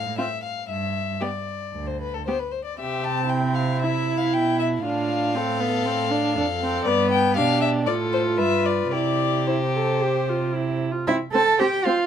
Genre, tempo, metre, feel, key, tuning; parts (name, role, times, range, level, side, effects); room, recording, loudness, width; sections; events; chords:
quick classical-period movement for string quartet; 116 BPM; 4/4; rubato; C major; A4 = 440 Hz
warm violin; melody; 0.0-11.9 s; A4 to A5; -26 LUFS; left 7 dB
rich cello; bass; 0.0-12.1 s; D2 to A4; -26 LUFS; right 4 dB
warm violin; second line; 0.2-12.1 s; E4 to A5; -28 LUFS; left 4 dB
warm viola; accompaniment; 0.2-11.9 s; B3 to A4; -25 LUFS; right 4 dB
light reverb; minimal, uncompressed stereo recording; -21 LUFS; side -9 dB against mid
0.0-11.1 A section
0.0 F/A; 0.7 G; 2.8 C; 4.9 F/A; 6.9 G; 7.9 F/A; 8.4 G7; 8.9 C; 11.1 C5